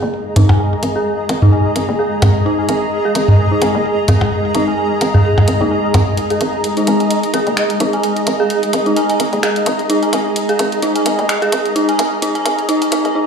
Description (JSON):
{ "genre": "minimal techno", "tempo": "129 BPM", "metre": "4/4", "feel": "swing 56% on 16ths", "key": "unclear", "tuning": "A4 = 440 Hz", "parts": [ { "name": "hollow knocking FM bass", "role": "bass", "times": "0.0-13.2 s", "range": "F#1 to G#1", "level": "-21 LUFS", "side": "equal", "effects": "tube saturation, high-pass filter" }, { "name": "granular cloud pad", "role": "texture", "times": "0.0-13.2 s", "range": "G#4 to A#5", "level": "-17 LUFS", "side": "equal", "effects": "built-in reverb" }, { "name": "dark detuned synth bell", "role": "riff", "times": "0.4-13.2 s", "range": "D#4 to G#5", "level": "-18 LUFS", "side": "equal", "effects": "chorus, low-pass filter, ping-pong delay" }, { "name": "house drum kit", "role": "drums", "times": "0.4-13.1 s", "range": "finger snaps, hi-hat", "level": "-23 LUFS", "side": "equal", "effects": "none" }, { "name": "electronic toms and percussion blips", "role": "percussion", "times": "0.4-6.0 s", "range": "none", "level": "-13 LUFS", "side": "equal", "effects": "ping-pong delay" } ], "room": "wet small room reverb, RT60 0.5 s", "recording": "played on a big sound system in a bare room, large studio reverb, high-pass filter", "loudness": "-13 LUFS", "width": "side -6 dB against mid", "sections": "0.0-6.2 A section; 6.2-13.3 B section", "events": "build-up 6.2-13.3; filter sweep on synth bell 6.2-13.3", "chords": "0.0 G#5" }